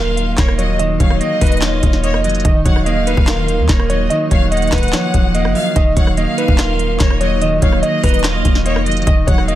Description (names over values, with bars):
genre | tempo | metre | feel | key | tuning
hip hop, trap | 145 BPM | 4/4 | half-time | Eb minor | A4 = 440 Hz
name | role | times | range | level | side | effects
glassy digital keys | melody | 0.0-9.6 s | Bb4 to Eb5 | -21 LUFS | equal | chorus
warm symphonic violin section | second line | 0.0-9.6 s | Db5 to Gb5 | -23 LUFS | left 3 dB | ping-pong delay
clean electric guitar | accompaniment | 0.0-9.6 s | Eb3 to F4 | -21 LUFS | right 4 dB | none
granular cloud pad | sustained chords | 0.1-9.6 s | Eb3 to Eb4 | -26 LUFS | equal | built-in reverb
clean 808-style bass | bass | 0.0-9.6 s | Db1 to Eb2 | -18 LUFS | equal | none
trap drum kit | drums | 0.2-9.6 s | handclaps, hi-hat, kick drum, rim click, snare drum | -16 LUFS | equal | none
room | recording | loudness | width
little or no reverb | none | -12 LUFS | side -13 dB against mid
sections
0.0-9.6 A section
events
none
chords
0.0 Ebmadd9